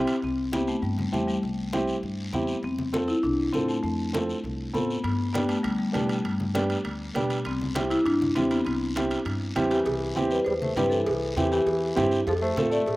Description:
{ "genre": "latin, cumbia", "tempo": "199 BPM", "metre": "4/4", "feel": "straight", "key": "C major", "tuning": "A4 = 440 Hz", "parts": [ { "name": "marimba with medium hard mallets", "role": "melody", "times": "0.0-13.0 s", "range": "G3 to D5", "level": "-27 LUFS", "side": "left 1 dB", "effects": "none" }, { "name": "dark upright piano", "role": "accompaniment", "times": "0.0-12.8 s", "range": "B3 to A4", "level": "-28 LUFS", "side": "right 2 dB", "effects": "slapback echo" }, { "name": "upright bass", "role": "bass", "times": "0.0-13.0 s", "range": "C2 to B2", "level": "-33 LUFS", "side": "equal", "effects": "none" }, { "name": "guiro", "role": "percussion", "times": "0.1-13.0 s", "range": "none", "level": "-41 LUFS", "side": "left 2 dB", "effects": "none" }, { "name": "timbales and cowbell", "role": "percussion", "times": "0.1-0.2, 5.0-13.0 s", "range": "none", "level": "-35 LUFS", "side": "right 3 dB", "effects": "none" }, { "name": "congas", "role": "percussion", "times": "0.2-12.7 s", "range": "none", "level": "-35 LUFS", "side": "left 1 dB", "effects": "none" }, { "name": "clear trombone", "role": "second line", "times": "9.7-13.0 s", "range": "E3 to A3", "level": "-32 LUFS", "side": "left 1 dB", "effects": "slapback echo" } ], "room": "light reverb", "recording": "recorded outdoors, with no room sound", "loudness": "-24 LUFS", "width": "side -18 dB against mid", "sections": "0.2-9.9 A section; 9.9-13.0 B section", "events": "none", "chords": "0.2 C; 2.6 F; 5.0 G; 7.5 C; 12.3 F" }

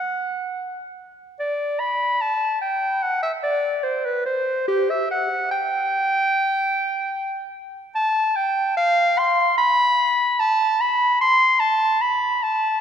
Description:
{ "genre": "classical, baroque-style fantasia for unaccompanied clarinet", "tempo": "74 BPM", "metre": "4/4", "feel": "rubato", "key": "G major", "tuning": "A4 = 439 Hz", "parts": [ { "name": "clear clarinet", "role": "solo", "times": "0.0-12.8 s", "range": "G4 to C6", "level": "-18 LUFS", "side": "equal", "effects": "none" } ], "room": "wet church reverb, RT60 2.9 s", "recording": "recorded in a church or concert hall", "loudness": "-18 LUFS", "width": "side -8 dB against mid", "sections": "0.0-12.8 A section", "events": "none", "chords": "none" }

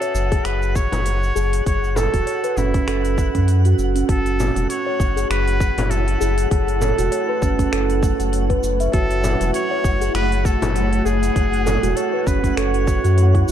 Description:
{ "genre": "organic downtempo", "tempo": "99 BPM", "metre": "4/4", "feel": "swing 56% on 16ths", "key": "F# minor", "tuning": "A4 = 440 Hz", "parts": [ { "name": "trumpet with straight mute", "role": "melody", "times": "0.0-13.4 s", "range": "E4 to C#5", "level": "-26 LUFS", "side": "equal", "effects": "ping-pong delay" }, { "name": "steel tongue drum", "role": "arpeggios", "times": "0.0-13.5 s", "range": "C#4 to E5", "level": "-22 LUFS", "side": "right 2 dB", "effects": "ping-pong delay" }, { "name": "organic electronic drum kit", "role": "drums", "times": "0.0-13.5 s", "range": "finger snaps, hi-hat, shaker", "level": "-32 LUFS", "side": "equal", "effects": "none" }, { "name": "twinkling granular texture", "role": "texture", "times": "0.0-13.5 s", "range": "F#5", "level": "-33 LUFS", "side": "right 2 dB", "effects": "built-in reverb" }, { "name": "warm sub bass", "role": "bass", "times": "0.1-13.5 s", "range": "E1 to F#2", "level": "-20 LUFS", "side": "equal", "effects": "sidechain pumping" }, { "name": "electronic kick drum", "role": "drums", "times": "0.3-13.5 s", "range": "none", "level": "-21 LUFS", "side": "equal", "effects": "none" }, { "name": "frame drum", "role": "percussion", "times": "0.9-11.8 s", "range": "none", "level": "-27 LUFS", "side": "left 4 dB", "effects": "none" }, { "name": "granular cloud pad", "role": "sustained chords", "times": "4.7-13.5 s", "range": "A3 to F#5", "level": "-27 LUFS", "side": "right 1 dB", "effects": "built-in reverb, sidechain pumping" } ], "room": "digital ambience", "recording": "dark, warm production", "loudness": "-16 LUFS", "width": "side -10 dB against mid", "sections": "0.0-4.1 A section; 4.1-13.5 B section", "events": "kick drops out 3.5-4.1", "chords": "0.0 F#m7" }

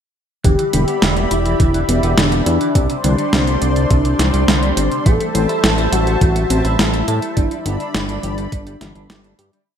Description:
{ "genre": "synthwave", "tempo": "104 BPM", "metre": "4/4", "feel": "straight", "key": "E minor", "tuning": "A4 = 440 Hz", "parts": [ { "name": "wide unison lead", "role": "melody", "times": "0.4-9.6 s", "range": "D4 to A4", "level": "-21 LUFS", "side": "left 1 dB", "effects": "ping-pong delay" }, { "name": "lush unison pad", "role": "sustained chords", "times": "0.4-9.7 s", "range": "G3 to C6", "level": "-23 LUFS", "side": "equal", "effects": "chorus, sidechain pumping" }, { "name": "thumb-piano-like synth pluck", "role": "arpeggios", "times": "0.4-9.7 s", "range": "D3 to G4", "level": "-24 LUFS", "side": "right 1 dB", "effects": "chorus, ping-pong delay" }, { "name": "semi-hollow electric guitar", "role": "riff", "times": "0.4-9.6 s", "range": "C3 to A4", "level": "-27 LUFS", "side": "right 2 dB", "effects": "lush chorus, low-pass filter, ping-pong delay" }, { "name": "fat analog bass", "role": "bass", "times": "0.4-9.5 s", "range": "E1 to A2", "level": "-19 LUFS", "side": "equal", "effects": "none" }, { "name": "clean 12-bit digital drum machine", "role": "drums", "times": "0.4-9.6 s", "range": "hi-hat, snare drum", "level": "-19 LUFS", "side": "equal", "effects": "gated reverb" }, { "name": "electronic kick drum", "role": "drums", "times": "0.4-8.6 s", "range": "none", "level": "-15 LUFS", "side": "equal", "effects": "none" } ], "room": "light reverb, digital ambience", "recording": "bright 1980s-style digital production", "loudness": "-14 LUFS", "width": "side -8 dB against mid", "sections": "0.4-9.7 verse", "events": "fade-out 6.6-9.7", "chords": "0.4 Em7; 2.8 Csus2; 5.1 Am7; 7.4 G6" }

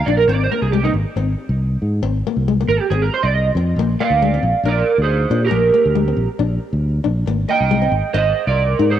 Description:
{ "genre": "highlife guitar band", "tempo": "138 BPM", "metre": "4/4", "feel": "straight", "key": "Bb mixolydian", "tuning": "A4 = 440 Hz", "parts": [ { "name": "electric guitar at the edge of break-up", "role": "melody", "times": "0.0-9.0 s", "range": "Eb4 to G5", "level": "-18 LUFS", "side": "right 5 dB", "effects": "analog chorus, cassette tape, tape echo" }, { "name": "nylon-string guitar", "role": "accompaniment", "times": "0.1-9.0 s", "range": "Ab3 to Eb4", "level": "-23 LUFS", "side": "left 10 dB", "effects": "cassette tape" }, { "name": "fingered electric bass", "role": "bass", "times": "0.1-9.0 s", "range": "Ab1 to Bb2", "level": "-18 LUFS", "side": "equal", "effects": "none" } ], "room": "light reverb", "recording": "home recording on cassette", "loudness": "-15 LUFS", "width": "side -10 dB against mid", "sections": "0.0-3.8 A section; 3.8-9.0 B section", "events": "clean electric guitar solo 0.0-3.8", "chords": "0.3 Ab; 3.8 Bb; 7.3 Abmaj7" }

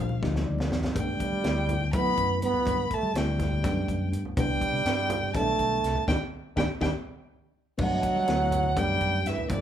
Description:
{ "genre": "electric jazz fusion", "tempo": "246 BPM (eighths)", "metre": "7/8", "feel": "straight", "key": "G major", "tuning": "A4 = 440 Hz", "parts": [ { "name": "rich violin", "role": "melody", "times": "0.0-9.6 s", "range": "D5 to B5", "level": "-30 LUFS", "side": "left 1 dB", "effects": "none" }, { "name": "trombone with plunger mute", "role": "second line", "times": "0.0-9.6 s", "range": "D3 to B3", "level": "-31 LUFS", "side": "right 4 dB", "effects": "none" }, { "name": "reed electric piano", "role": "accompaniment", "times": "0.0-9.6 s", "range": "E3 to D5", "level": "-33 LUFS", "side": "left 2 dB", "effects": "fast tremolo" }, { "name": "fingered electric bass", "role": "bass", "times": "0.0-9.6 s", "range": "Bb1 to G3", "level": "-30 LUFS", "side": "equal", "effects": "none" }, { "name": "congas", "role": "percussion", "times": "0.1-9.6 s", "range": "none", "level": "-36 LUFS", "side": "right 1 dB", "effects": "none" }, { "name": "tight funk drum kit", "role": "drums", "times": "0.2-9.6 s", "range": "crash cymbal, hi-hat, kick drum, snare drum", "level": "-33 LUFS", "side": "equal", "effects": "none" } ], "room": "light reverb", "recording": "band playing live in one room", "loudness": "-24 LUFS", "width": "side -10 dB against mid", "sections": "0.0-7.8 A section; 7.8-9.6 A section", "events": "drum fill 0.2-1.0, 6.3-7.8; reed electric piano fill 0.2-1.0; band accent 6.1-7.8", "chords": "0.0 Ebmaj9; 1.0 Gmaj9; 4.4 Cmaj9; 6.1 Ebmaj7(no3); 7.8 Gmaj9" }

